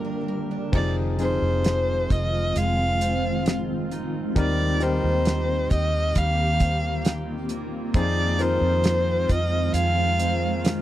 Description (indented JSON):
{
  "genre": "pop ballad",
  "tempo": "67 BPM",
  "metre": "4/4",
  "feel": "straight",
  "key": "unclear",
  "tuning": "A4 = 438 Hz",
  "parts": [
    { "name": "dark violin", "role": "melody", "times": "0.0-10.6 s", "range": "Bb4 to F5", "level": "-26 LUFS", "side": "equal", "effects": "none" },
    { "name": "clear grand piano", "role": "accompaniment", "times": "0.0-10.8 s", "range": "G1 to Bb4", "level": "-30 LUFS", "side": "left 4 dB", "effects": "none" },
    { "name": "granular cloud pad", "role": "sustained chords", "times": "0.0-10.8 s", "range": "D3 to Bb4", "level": "-30 LUFS", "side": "right 1 dB", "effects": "built-in reverb" },
    { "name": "picked steel-string acoustic guitar", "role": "arpeggios", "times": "0.0-10.8 s", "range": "G2 to C5", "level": "-33 LUFS", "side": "equal", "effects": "none" },
    { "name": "vintage muted fingered electric bass", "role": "bass", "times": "0.7-10.8 s", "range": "F1 to F2", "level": "-25 LUFS", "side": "equal", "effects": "none" },
    { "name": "damped 70s drum kit", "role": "drums", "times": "0.7-10.8 s", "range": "crash cymbal, hi-hat, kick drum, snare drum", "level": "-22 LUFS", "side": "right 1 dB", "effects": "none" }
  ],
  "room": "little or no reverb",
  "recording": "dry, close 1970s-style studio recording",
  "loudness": "-21 LUFS",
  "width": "side -13 dB against mid",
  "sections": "0.7-10.8 A section",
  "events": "none",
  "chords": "0.0 Gm7; 0.7 Fm7; 4.4 Cm7/Eb"
}